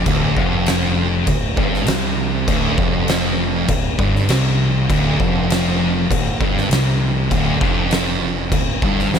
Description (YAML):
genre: stoner and doom metal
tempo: 99 BPM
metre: 4/4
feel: straight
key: D minor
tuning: A4 = 440 Hz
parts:
  - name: thick fuzz guitar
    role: riff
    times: 0.0-9.2 s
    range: D2 to C3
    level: -22 LUFS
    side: left 10 dB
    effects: distortion
  - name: thick fuzz guitar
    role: riff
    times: 0.0-9.2 s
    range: D2 to C3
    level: -21 LUFS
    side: right 10 dB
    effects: distortion
  - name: growling fingered electric bass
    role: bass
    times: 0.0-9.2 s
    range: D1 to C2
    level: -23 LUFS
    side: equal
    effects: overdrive
  - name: oversized low-tuned drum kit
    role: drums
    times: 0.1-9.2 s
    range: crash cymbal, kick drum, snare drum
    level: -20 LUFS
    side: equal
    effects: none
room: little or no reverb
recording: none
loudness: -15 LUFS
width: side -7 dB against mid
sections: 0.1-9.2 A section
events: none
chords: 0.1 Dm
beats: | 0.07 0.68 1.28 1.88 | 2.49 3.09 3.69 4.29 | 4.90 5.50 6.11 6.71 | 7.31 7.92 8.52 9.13